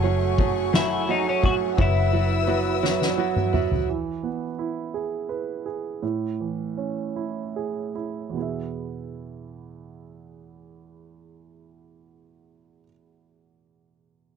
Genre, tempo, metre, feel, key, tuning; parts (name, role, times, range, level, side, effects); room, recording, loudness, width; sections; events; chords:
six-eight pop ballad; 48-57 BPM (dotted quarters); 6/8; straight; E major; A4 = 439 Hz
warm baby grand piano; accompaniment; 0.0-14.4 s; E2 to F#5; -27 LUFS; right 9 dB
warm studio string section; sustained chords; 0.0-3.9 s; A3 to E6; -30 LUFS; left 2 dB
direct-recorded clean electric guitar; arpeggios; 0.0-3.9 s; F#2 to G#4; -33 LUFS; left 16 dB
vintage muted fingered electric bass; bass; 0.0-3.8 s; F#1; -26 LUFS; left 1 dB
soft-mallet drum kit; drums; 0.0-3.9 s; kick drum, ride cymbal, snare drum, toms; -25 LUFS; left 1 dB
twelve-string electric guitar; melody; 0.8-3.2 s; C#4 to F#4; -26 LUFS; left 6 dB
little or no reverb; -23 LUFS; side -7 dB against mid
0.0-3.9 A section; 3.9-8.4 B section; 8.4-13.3 C section
drum fill 2.8-3.9; grand piano fill 2.8-3.9; slowing down 3.9-8.4
0.0 F#madd9; 1.8 Bsus4/F#; 3.9 E; 6.0 Amaj7; 8.4 E